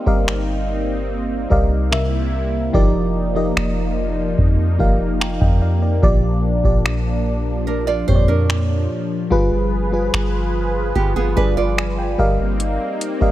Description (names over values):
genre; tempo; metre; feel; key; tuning
contemporary R&B; 73 BPM; 4/4; straight; Bb major; A4 = 440 Hz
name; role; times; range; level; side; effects
mellow FM electric piano; accompaniment; 0.0-13.3 s; Bb2 to Bb5; -22 LUFS; equal; chorus
warm analog pad; sustained chords; 0.0-13.3 s; C3 to B4; -25 LUFS; equal; chorus
soft 808-style bass; bass; 0.1-13.3 s; F1 to F2; -21 LUFS; equal; none
booming analog drum machine; drums; 0.1-13.3 s; finger snaps, hi-hat, kick drum; -19 LUFS; equal; none
nylon-string guitar; arpeggios; 7.7-12.2 s; B3 to D5; -23 LUFS; right 7 dB; tape echo
room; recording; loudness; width
little or no reverb; none; -16 LUFS; side -14 dB against mid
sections
0.0-13.3 A section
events
FM electric piano fill 11.4-12.6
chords
0.0 Cm11/G; 1.9 C7; 2.7 F13sus4; 6.0 Bb6; 9.3 G7b9; 12.2 Cm11/G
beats
0.27 1.09 1.92 | 2.74 3.56 4.38 5.20 | 6.03 6.85 7.67 8.49 | 9.31 10.13 10.96 11.78 | 12.60